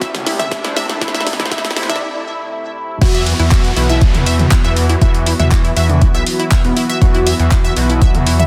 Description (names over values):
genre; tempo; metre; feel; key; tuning
melodic techno; 120 BPM; 4/4; straight; E minor; A4 = 440 Hz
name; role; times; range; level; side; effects
fat analog lead; melody; 0.0-8.0 s; B3 to F#4; -26 LUFS; equal; ensemble chorus, sidechain pumping, digital delay
lush unison pad; sustained chords; 0.0-8.5 s; C3 to E4; -31 LUFS; equal; none
tight sequenced synth; arpeggios; 0.0-8.5 s; E4 to E5; -25 LUFS; equal; chorus, sidechain pumping, delay
analog synth brass; stabs; 0.0-8.5 s; C3 to F#4; -26 LUFS; equal; chorus, sidechain pumping, delay
gritty driven synth bass; bass; 0.0-8.5 s; E1 to E2; -19 LUFS; equal; sidechain pumping, high-pass filter
deep house drum kit; drums; 0.0-8.5 s; crash cymbal, handclaps, hi-hat, snare drum, toms; -23 LUFS; equal; soft clipping on snare
electronic kick drum; drums; 0.0-8.1 s; none; -15 LUFS; equal; none
riser and downlifter; sound effects; 0.1-7.0 s; none; -30 LUFS; equal; none
ethereal airy pad; texture; 0.0-8.5 s; B3 to B5; -34 LUFS; equal; none
room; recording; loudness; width
light reverb, digital ambience; dense, heavily limited modern master, high-pass filter; -14 LUFS; mono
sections
0.0-3.0 A section; 3.0-8.5 B section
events
build-up 0.0-3.0; drum fill 0.0-2.0; filter sweep on analog polysynth 0.0-3.0; filter sweep 0.0-3.0; break 2.0-3.0; drop 3.0-8.5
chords
0.0 C6; 3.0 Esus2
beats
0.02 0.52 | 1.02 1.52 2.02 2.52 | 3.02 3.52 4.02 4.52 | 5.02 5.52 6.02 6.52 | 7.02 7.52 8.02